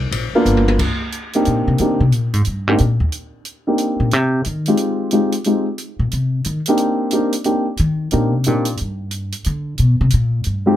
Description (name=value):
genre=jazz piano trio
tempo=180 BPM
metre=3/4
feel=swing 64% on 8ths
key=C minor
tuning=A4 = 439 Hz
part: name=upright bass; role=bass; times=0.0-10.8 s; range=G1 to Eb3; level=-17 LUFS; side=equal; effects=none
part: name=open jazz drum kit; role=drums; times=0.1-10.5 s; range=crash cymbal, hi-hat, kick drum, ride cymbal, toms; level=-25 LUFS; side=equal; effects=none
part: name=dark baby grand piano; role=melody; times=0.4-8.7, 10.7-10.8 s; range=Ab3 to G4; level=-17 LUFS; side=equal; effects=none
room=light reverb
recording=none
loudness=-16 LUFS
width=side -12 dB against mid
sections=0.8-10.8 A section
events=drum fill 0.5-0.8; upright bass solo 0.8-10.8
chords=0.5 G7#9; 0.8 Cm7; 4.8 Fm7; 8.8 Gm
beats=0.12 0.46 | 0.79 1.12 1.46 | 1.79 2.12 2.46 | 2.79 3.12 3.46 | 3.79 4.12 4.46 | 4.79 5.12 5.45 | 5.79 6.12 6.45 | 6.79 7.12 7.45 | 7.78 8.12 8.45 | 8.78 9.12 9.45 | 9.78 10.11 10.45